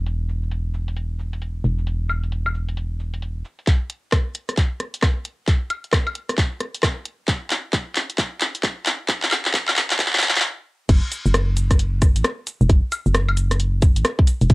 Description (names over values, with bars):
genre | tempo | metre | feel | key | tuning
UK garage, two-step garage | 133 BPM | 4/4 | swing 62% on 16ths | unclear | A4 = 439 Hz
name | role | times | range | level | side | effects
organ-like FM bass | bass | 0.0-3.4, 10.9-14.5 s | E1 to A1 | -20 LUFS | equal | sidechain pumping
garage drum kit | drums | 0.1-14.5 s | crash cymbal, handclaps, hi-hat, rim click, shaker, woodblock | -21 LUFS | equal | low-pass filter on hats, cassette tape, low-pass filter on perc, low-pass filter on snare, low-pass filter on cymbals, low-pass filter on room
electronic kick drum | drums | 3.7-14.5 s | none | -17 LUFS | equal | cassette tape
room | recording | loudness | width
light reverb | home recording on cassette, high-pass filter | -19 LUFS | side -23 dB against mid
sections
0.0-3.7 A section; 3.7-10.9 B section; 10.9-14.5 C section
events
build-up 3.7-10.9; drum fill 3.7-10.4; filter sweep 3.7-10.9; stop 10.4-10.9; drop 10.9-14.5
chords
none